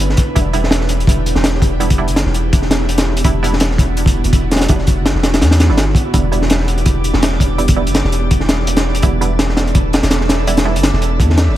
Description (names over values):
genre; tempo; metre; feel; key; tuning
drum and bass, jungle; 166 BPM; 4/4; swing 55% on 16ths; E minor; A4 = 440 Hz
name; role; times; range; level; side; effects
ethereal airy pad; sustained chords; 0.0-11.6 s; B3 to B4; -22 LUFS; right 2 dB; ensemble chorus, built-in reverb
long sustained 808-style bass; bass; 0.0-11.6 s; E1 to E2; -16 LUFS; equal; none
crunchy breakbeat drum kit; drums; 0.1-11.5 s; hi-hat, kick drum, snare drum; -14 LUFS; equal; none
filtered dub chord stab; stabs; 0.4-10.8 s; G3 to E4; -24 LUFS; right 4 dB; chorus, dub echo
drifting glass-harmonics texture; texture; 6.6-11.6 s; D5 to D6; -28 LUFS; equal; chorus, built-in reverb
room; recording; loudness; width
small room ambience; none; -12 LUFS; side -13 dB against mid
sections
0.0-11.6 A section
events
none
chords
0.0 Em7